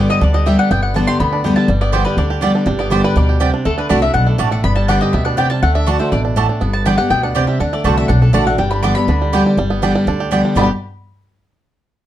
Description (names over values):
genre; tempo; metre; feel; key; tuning
bluegrass; 243 BPM; 4/4; straight; G major; A4 = 440 Hz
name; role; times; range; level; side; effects
bluegrass banjo; melody; 0.0-10.7 s; D3 to G4; -22 LUFS; right 5 dB; none
mandolin; melody; 0.0-10.7 s; A4 to D6; -20 LUFS; left 3 dB; none
picked steel-string acoustic guitar; accompaniment; 0.0-10.7 s; G2 to G4; -17 LUFS; left 1 dB; none
upright bass; bass; 0.0-10.7 s; G1 to D2; -17 LUFS; equal; none
mandolin; stabs; 1.9-10.7 s; A3 to A5; -21 LUFS; right 9 dB; none
room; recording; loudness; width
light reverb; dark, warm production; -13 LUFS; side -12 dB against mid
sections
0.0-9.6 A section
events
none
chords
0.0 G; 3.7 D; 4.6 G; 5.6 D; 6.6 G; 7.6 D; 8.6 G